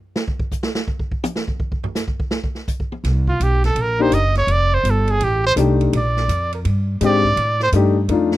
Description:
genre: jazz, small-group swing and bop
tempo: 166 BPM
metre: 4/4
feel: swing 65% on 8ths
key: unclear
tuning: A4 = 440 Hz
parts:
  - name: swinging big-band drum kit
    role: drums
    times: 0.2-8.4 s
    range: hi-hat, kick drum, ride cymbal, snare drum, toms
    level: -24 LUFS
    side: right 1 dB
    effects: none
  - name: upright bass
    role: bass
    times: 3.0-8.4 s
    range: F1 to A2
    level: -18 LUFS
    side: equal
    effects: none
  - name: clear trumpet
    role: second line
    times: 3.3-7.7 s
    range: F4 to Eb5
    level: -19 LUFS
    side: right 2 dB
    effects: none
  - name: warm grand piano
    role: accompaniment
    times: 4.0-8.3 s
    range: Ab3 to G4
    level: -18 LUFS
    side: left 5 dB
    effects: none
room: small room ambience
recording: dry, close 1970s-style studio recording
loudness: -16 LUFS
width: side -15 dB against mid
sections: 0.0-8.4 A section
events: trumpet solo 0.0-8.4; drum solo 0.0-3.0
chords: 0.0 N.C.; 3.0 C7(no3); 4.5 F13; 5.9 Bb13; 7.4 F13

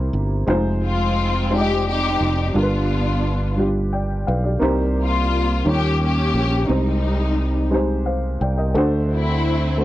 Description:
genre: slow gospel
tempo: 58 BPM (dotted quarters)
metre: 6/8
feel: straight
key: unclear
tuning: A4 = 440 Hz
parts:
  - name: warm upright piano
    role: accompaniment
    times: 0.0-9.8 s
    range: G2 to G5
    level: -23 LUFS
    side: equal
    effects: none
  - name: fingered electric bass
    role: bass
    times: 0.0-9.8 s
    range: F1 to Eb2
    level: -21 LUFS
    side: equal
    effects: none
  - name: warm studio string section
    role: melody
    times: 0.8-9.8 s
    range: G3 to G4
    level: -22 LUFS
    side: left 2 dB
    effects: none
room: little or no reverb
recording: dry, close 1970s-style studio recording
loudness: -18 LUFS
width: side -15 dB against mid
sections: 0.0-9.8 A section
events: none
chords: 0.5 Fm7; 2.6 G7; 4.6 Cm7; 5.7 Eb9; 6.7 Abmaj7/C; 8.8 D7

